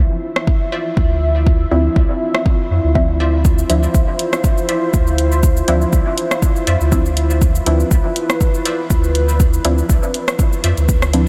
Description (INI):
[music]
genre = dub techno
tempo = 121 BPM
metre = 4/4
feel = swing 55% on 16ths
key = D dorian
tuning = A4 = 440 Hz
[part]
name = dark analog pad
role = sustained chords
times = 0.0-11.3 s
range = E4 to E5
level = -24 LUFS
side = equal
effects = chorus, sidechain pumping
[part]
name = filtered dub chord stab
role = stabs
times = 0.0-11.3 s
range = F3 to E4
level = -26 LUFS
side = equal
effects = chorus, phaser, sidechain pumping, dub echo
[part]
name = soft dub sub bass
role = bass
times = 0.0-11.3 s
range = C2 to F2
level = -19 LUFS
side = equal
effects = sidechain pumping
[part]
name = deep house drum kit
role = drums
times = 0.4-11.2 s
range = cabasa, hi-hat, rim click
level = -26 LUFS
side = equal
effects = overdrive
[part]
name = electronic kick drum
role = drums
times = 0.5-11.0 s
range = none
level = -17 LUFS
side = equal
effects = overdrive
[part]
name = wavetable chord stab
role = riff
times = 0.7-10.8 s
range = F4 to E5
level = -33 LUFS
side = equal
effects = phaser, sidechain pumping, dub echo
[sound]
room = moderate huge ambient reverb, RT60 8.3 s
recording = dreamy mix soaked in reverb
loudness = -16 LUFS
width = mono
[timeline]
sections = 0.0-11.3 A section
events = filter sweep on synth stab 0.0-11.3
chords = 0.0 Dm9